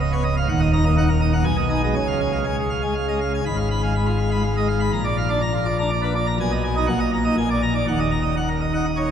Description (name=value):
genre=classical, organ toccata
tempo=122 BPM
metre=3/4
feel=straight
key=Eb minor from 3.4 s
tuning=A4 = 441 Hz
part: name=pipe organ, plenum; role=solo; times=0.0-9.1 s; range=C#1 to Cb6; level=-19 LUFS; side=equal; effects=none
room=wet church reverb, RT60 3.5 s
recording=heard from further back in the room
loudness=-19 LUFS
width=side -8 dB against mid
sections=0.0-9.1 A section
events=none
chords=0.5 D#m; 1.5 G#m/B; 2.0 C#; 3.4 Fdim/Ab; 4.9 Bb; 6.4 Abm/Cb; 6.9 Ebm/Bb; 7.4 Bb7; 7.9 Ebm